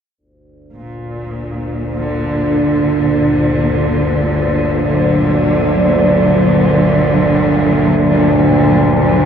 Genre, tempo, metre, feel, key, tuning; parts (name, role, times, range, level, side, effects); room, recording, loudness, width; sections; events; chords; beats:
dark ambient drone; free time; G minor; A4 = 442 Hz
overtone-sweeping drone; drone; 1.3-9.3 s; G1 to D2; -14 LUFS; right 1 dB; chorus, built-in reverb
rich studio cello section; sustained chords; 0.8-9.3 s; Bb2 to F#3; -14 LUFS; equal
gamelan-type bronze metallophone; arpeggios; 3.6-9.3 s; F#3 to Bb4; -27 LUFS; equal
wet huge ambient reverb, RT60 8.3 s; worn, warbling old tape, cassette tape, warbly pitch drift; -11 LUFS; side -8 dB against mid
0.2-9.3 A section
0.2 Gmmaj7
free time